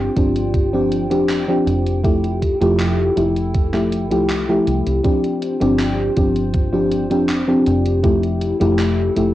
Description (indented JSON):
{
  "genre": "vaporwave",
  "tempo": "80 BPM",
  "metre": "4/4",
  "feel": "straight",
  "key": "F major",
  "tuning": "A4 = 440 Hz",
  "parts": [
    { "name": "mellow FM electric piano", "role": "accompaniment", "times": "0.0-9.3 s", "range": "F3 to G4", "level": "-17 LUFS", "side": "left 1 dB", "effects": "lush chorus, cassette tape, tape echo" },
    { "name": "warbly tape-like pad", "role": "sustained chords", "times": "0.0-9.3 s", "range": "E4 to G5", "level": "-31 LUFS", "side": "right 2 dB", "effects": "chorus, built-in reverb, cassette tape, plate reverb" },
    { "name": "deep dub fingered electric bass", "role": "bass", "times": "0.0-9.3 s", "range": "F1 to C2", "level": "-22 LUFS", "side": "right 1 dB", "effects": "tube saturation" },
    { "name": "electronic kick drum", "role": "drums", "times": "0.2-8.2 s", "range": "none", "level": "-18 LUFS", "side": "right 1 dB", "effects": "cassette tape" },
    { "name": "gated 80s digital drum machine", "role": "drums", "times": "0.2-9.3 s", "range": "handclaps, hi-hat", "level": "-30 LUFS", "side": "right 1 dB", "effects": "gated reverb, cassette tape" }
  ],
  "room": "moderate studio reverb, RT60 0.6 s",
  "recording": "home recording on cassette",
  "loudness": "-15 LUFS",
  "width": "side -14 dB against mid",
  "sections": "0.0-9.3 A section",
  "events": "none",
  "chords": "0.0 G7sus4; 2.0 Fmaj9; 5.0 G7sus4; 8.0 Fmaj9",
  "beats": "0.54 1.29 | 2.04 2.79 3.54 4.29 | 5.04 5.79 6.54 7.29 | 8.04 8.79"
}